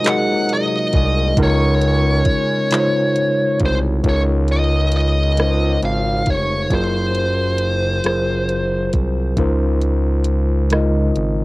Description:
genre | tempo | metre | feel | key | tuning
slow six-eight R&B | 45 BPM (dotted quarters) | 6/8 | straight | Db major | A4 = 438 Hz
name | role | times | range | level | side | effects
bluesy overdriven lead guitar | melody | 0.0-8.9 s | C5 to Gb5 | -21 LUFS | equal | distortion, cassette tape
mellow tine electric piano | accompaniment | 0.0-11.4 s | Db3 to Eb5 | -20 LUFS | left 1 dB | medium stereo tremolo, cassette tape
hollow soft pad | sustained chords | 0.0-4.0 s | C3 to Ab4 | -29 LUFS | right 1 dB | chorus, cassette tape
smooth R&B drum kit | drums | 0.0-11.4 s | handclaps, hi-hat, kick drum, rim click | -20 LUFS | equal | cassette tape
smooth synth bass | bass | 0.9-11.4 s | F1 to Db2 | -18 LUFS | equal | none
room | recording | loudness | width
little or no reverb | home recording on cassette | -15 LUFS | side -21 dB against mid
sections
0.0-4.0 A section; 4.0-11.4 B section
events
none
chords
0.0 Ab13; 1.4 Db6; 4.0 Dbmaj13; 6.7 Gbmaj9#11; 9.4 Dbmaj13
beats
0.04 | 1.37 2.70 | 4.04 5.37 | 6.70 8.04 | 9.37 10.70

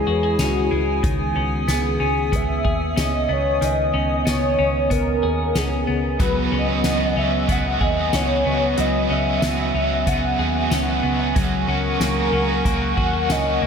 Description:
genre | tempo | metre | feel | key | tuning
dream pop | 93 BPM | 4/4 | straight | unclear | A4 = 440 Hz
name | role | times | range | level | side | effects
warm velvety synth lead | melody | 0.0-13.7 s | F#4 to F#5 | -23 LUFS | left 1 dB | chorus, ping-pong delay
hollow soft pad | sustained chords | 0.0-13.7 s | B3 to D#6 | -26 LUFS | right 3 dB | chorus
semi-hollow electric guitar | arpeggios | 0.0-13.7 s | D#3 to G#4 | -25 LUFS | left 4 dB | wide subtle chorus, ping-pong delay
vintage muted picked electric bass | bass | 0.0-13.7 s | C#2 to E2 | -25 LUFS | equal | none
soft-mallet drum kit | drums | 0.4-13.4 s | hi-hat, kick drum, snare drum, tambourine | -26 LUFS | equal | none
overdriven electric guitar | accompaniment | 6.2-13.7 s | C#3 to G#4 | -27 LUFS | right 3 dB | tremolo, wide subtle chorus
room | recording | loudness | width
wet cathedral reverb, RT60 5.9 s | dreamy mix soaked in reverb | -18 LUFS | side -6 dB against mid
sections
0.0-13.7 A section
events
none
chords
0.0 C#m; 1.0 G#m/C#; 6.2 Eadd9/C#; 11.4 F#add9/C#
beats
0.39 | 1.04 1.68 2.33 2.97 | 3.62 4.26 4.91 5.55 | 6.20 6.84 7.49 8.13 | 8.78 9.43 10.07 10.72 | 11.36 12.01 12.65 13.30

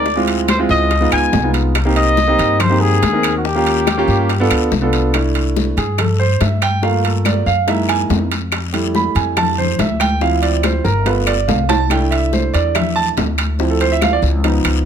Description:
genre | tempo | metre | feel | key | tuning
Afro-Cuban jazz | 142 BPM | 4/4 | straight | C major from 5.1 s | A4 = 440 Hz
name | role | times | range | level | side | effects
dark trumpet | melody | 0.0-4.7 s | Gb4 to Ab5 | -17 LUFS | left 2 dB | none
warm grand piano | accompaniment | 0.0-14.9 s | F3 to B5 | -17 LUFS | right 3 dB | none
upright bass | bass | 0.0-14.8 s | G1 to G2 | -18 LUFS | left 1 dB | none
bongos | percussion | 0.1-14.9 s | none | -27 LUFS | left 9 dB | none
congas | percussion | 0.1-14.9 s | none | -24 LUFS | left 3 dB | none
guiro | percussion | 0.1-14.9 s | none | -30 LUFS | left 10 dB | none
timbales | percussion | 0.3-14.9 s | none | -24 LUFS | right 8 dB | none
claves | percussion | 0.5-14.9 s | none | -27 LUFS | left 9 dB | none
room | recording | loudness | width
light reverb | close, detailed microphones | -13 LUFS | side -8 dB against mid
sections
0.0-5.1 A section; 5.1-14.9 B section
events
grand piano solo 5.1-14.9; drum fill 11.7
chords
0.1 Dm7b5; 0.9 Db9; 1.8 Cm7; 3.4 Eb7; 4.3 G7; 5.1 C6; 6.8 Gm7; 7.7 F#13; 8.5 Fmaj9; 10.2 Dm7; 11.1 G7; 11.9 C69; 13.6 Dm7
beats
| 0.06 0.48 0.91 1.33 | 1.75 2.18 2.60 3.02 | 3.45 3.87 4.29 4.72 | 5.14 5.56 5.99 6.41 | 6.83 7.25 7.68 8.10 | 8.52 8.95 9.37 9.79 | 10.21 10.64 11.06 11.48 | 11.90 12.33 12.75 13.17 | 13.60 14.02 14.44

